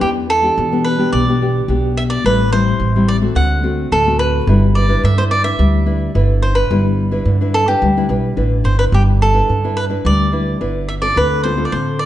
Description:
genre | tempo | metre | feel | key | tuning
samba and choro | 108 BPM | 4/4 | straight | G major | A4 = 439 Hz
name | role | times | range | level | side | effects
cavaquinho | melody | 0.0-12.1 s | G4 to F#5 | -18 LUFS | right 1 dB | none
nylon-string guitar | accompaniment | 0.0-12.1 s | A2 to B4 | -19 LUFS | left 2 dB | none
upright bass | bass | 0.0-12.1 s | G1 to E3 | -16 LUFS | right 1 dB | none
room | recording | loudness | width
moderate large studio reverb, RT60 1.3 s | dark, warm production, nothing above 10.9 kHz | -13 LUFS | side -12 dB against mid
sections
0.0-8.9 A section; 8.9-12.1 A section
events
none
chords
0.0 Em7; 2.2 Am7; 3.4 D7; 4.5 G6; 11.2 Dm7

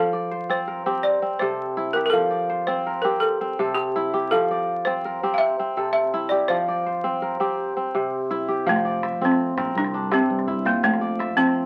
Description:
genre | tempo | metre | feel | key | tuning
west african traditional, West African string and xylophone music | 110 BPM (dotted quarters) | 12/8 | straight | F major | A4 = 440 Hz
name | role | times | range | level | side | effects
balafon | melody | 0.0-11.7 s | A3 to F5 | -25 LUFS | equal | none
kora | arpeggios | 0.0-11.7 s | C3 to E5 | -26 LUFS | equal | none
sustaining fretless electric bass | bass | 8.7-11.7 s | F1 to F3 | -33 LUFS | equal | none
calabash | percussion | 8.7-11.6 s | none | -38 LUFS | equal | none
room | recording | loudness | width
moderate club reverb, RT60 0.7 s | very old 78 rpm record, vinyl crackle | -23 LUFS | mono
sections
0.0-8.7 A section; 8.7-11.7 A section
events
none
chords
0.0 F; 1.0 C; 2.1 F; 3.2 C; 4.3 F; 5.4 C; 6.5 F5; 7.6 C; 8.7 F; 9.8 C; 10.8 F

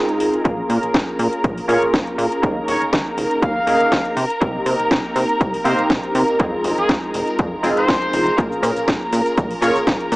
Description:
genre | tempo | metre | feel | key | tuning
filtered disco house | 121 BPM | 4/4 | swing 54% on 16ths | Bb dorian | A4 = 440 Hz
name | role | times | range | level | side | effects
funky polysynth comp | accompaniment | 0.0-10.2 s | Ab3 to Bb4 | -21 LUFS | equal | chorus, phaser, sidechain pumping, low-pass filter
rich studio string section | sustained chords | 0.0-10.2 s | Bb4 to Bb5 | -24 LUFS | equal | sidechain pumping, low-pass filter
house drum kit | drums | 0.1-10.2 s | cabasa, hi-hat, rim click, snare drum | -24 LUFS | equal | overdrive, sidechain pumping on hats, sidechain pumping on perc
tube shaker | percussion | 0.2-10.2 s | none | -44 LUFS | equal | none
plucky analog bass | bass | 0.5-10.2 s | Eb1 to C3 | -23 LUFS | equal | sidechain pumping, low-pass filter
electronic kick drum | drums | 0.5-10.0 s | none | -21 LUFS | equal | overdrive
brilliant trumpet section | melody | 1.7-9.8 s | Ab4 to F5 | -22 LUFS | equal | sidechain pumping, low-pass filter
room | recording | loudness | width
light reverb | small speaker sound | -16 LUFS | side -20 dB against mid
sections
0.0-10.2 A section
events
break 0.0-0.5; filter sweep 0.0-10.2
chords
0.5 Bbm7; 2.4 Eb7sus4; 4.2 Cm7; 6.4 Fm7; 8.4 Bbm7

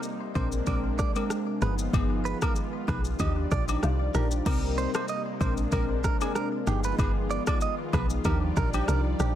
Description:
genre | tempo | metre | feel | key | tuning
afrobeats | 95 BPM | 4/4 | swing 55% on 16ths | unclear | A4 = 440 Hz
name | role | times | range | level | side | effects
lush unison pad | sustained chords | 0.0-9.4 s | C3 to D5 | -36 LUFS | equal | chorus
afro-pop drum kit | drums | 0.0-9.4 s | crash cymbal, kick drum, rim click, shaker | -30 LUFS | equal | soft clipping on snare
glassy wavetable pluck | accompaniment | 0.4-9.4 s | F3 to Bb4 | -32 LUFS | left 2 dB | chorus
direct-recorded clean electric guitar | riff | 0.4-9.3 s | G4 to Eb5 | -34 LUFS | right 7 dB | ping-pong delay
woody log drum bass | bass | 0.4-9.4 s | G1 to Eb2 | -28 LUFS | equal | none
agogo bells and woodblock | percussion | 0.4-8.9 s | none | -39 LUFS | left 9 dB | none
room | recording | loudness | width
little or no reverb | dense, heavily limited modern master | -25 LUFS | side -11 dB against mid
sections
0.0-4.5 A section; 4.5-9.4 B section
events
none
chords
0.4 Bb9; 1.6 G7b9b13; 3.2 Ebmaj9; 4.5 Cm7; 5.4 Bb9; 6.7 G7b9b13; 8.2 Ebmaj9

